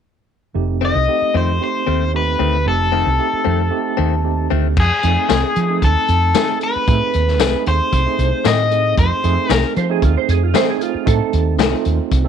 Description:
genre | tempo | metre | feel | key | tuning
straight-eighth soul blues | 114 BPM | 4/4 | straight | F mixolydian | A4 = 439 Hz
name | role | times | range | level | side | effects
tine electric piano | accompaniment | 0.5-12.3 s | A3 to A4 | -23 LUFS | right 15 dB | medium stereo tremolo
woody fretless electric bass | bass | 0.5-12.2 s | F1 to F3 | -18 LUFS | right 1 dB | analog chorus
biting overdriven guitar | melody | 0.8-9.7 s | G#4 to Eb5 | -18 LUFS | left 4 dB | none
direct-recorded clean electric guitar | stabs | 0.8-11.8 s | Eb3 to G#4 | -22 LUFS | left 12 dB | none
crunchy breakbeat drum kit | drums | 4.8-12.2 s | crash cymbal, hi-hat, kick drum, snare drum, tambourine | -20 LUFS | left 3 dB | none
electric guitar through a small old amp | second line | 9.8-12.3 s | F4 to C5 | -22 LUFS | right 13 dB | ensemble chorus
room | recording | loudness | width
small room ambience | 1960s-style stereo with parts hard left and right | -14 LUFS | side -8 dB against mid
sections
0.6-4.8 A section; 4.8-12.3 B section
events
none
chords
0.6 F7; 4.8 F7#9

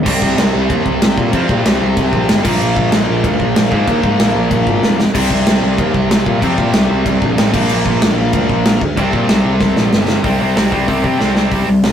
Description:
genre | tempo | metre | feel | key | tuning
punk rock | 188 BPM | 4/4 | straight | unclear | A4 = 439 Hz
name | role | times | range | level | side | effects
sludgy distorted guitar | riff | 0.0-11.9 s | Bb2 to C4 | -16 LUFS | equal | overdrive
fuzz picked electric bass | bass | 0.1-11.9 s | F1 to C3 | -17 LUFS | equal | overdrive
big rock drum kit | drums | 0.1-11.9 s | crash cymbal, hi-hat, kick drum, snare drum | -16 LUFS | equal | none
room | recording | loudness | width
light reverb | rough rehearsal-room recording, warm saturation | -11 LUFS | side -9 dB against mid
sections
0.1-10.2 A section; 10.2-11.5 B section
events
drum fill 4.8-5.2, 9.6-10.2, 11.2-11.5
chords
0.1 C5; 2.4 Bb5; 5.2 C5; 7.5 Bb; 9.0 C5

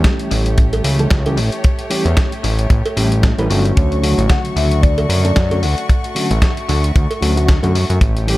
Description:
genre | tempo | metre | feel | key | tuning
nu-disco, nu disco | 113 BPM | 4/4 | swing 56% on 16ths | D major | A4 = 438 Hz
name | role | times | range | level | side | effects
overdriven reed electric piano | accompaniment | 0.0-8.4 s | C#3 to B4 | -21 LUFS | equal | fast tremolo, sidechain pumping, analog delay
warm chamber violin section | sustained chords | 0.0-8.4 s | A3 to C#6 | -26 LUFS | left 1 dB | sidechain pumping
fat analog bass | bass | 0.0-8.4 s | G1 to F#2 | -16 LUFS | equal | none
dusty soul sampler-style drum kit | drums | 0.0-8.4 s | hi-hat, snare drum | -23 LUFS | left 1 dB | studio reverb, analog delay
kick drum | drums | 0.0-8.1 s | none | -14 LUFS | equal | studio reverb
cowbell | percussion | 0.7-7.7 s | none | -26 LUFS | right 3 dB | none
soft octave-layered synth lead | melody | 3.8-6.4 s | C#5 to F#5 | -25 LUFS | left 2 dB | chorus, phaser, dub echo
room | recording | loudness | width
small room ambience | echo-heavy mix | -13 LUFS | side -18 dB against mid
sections
0.0-8.4 A section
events
none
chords
0.0 A7; 3.8 Dmaj7

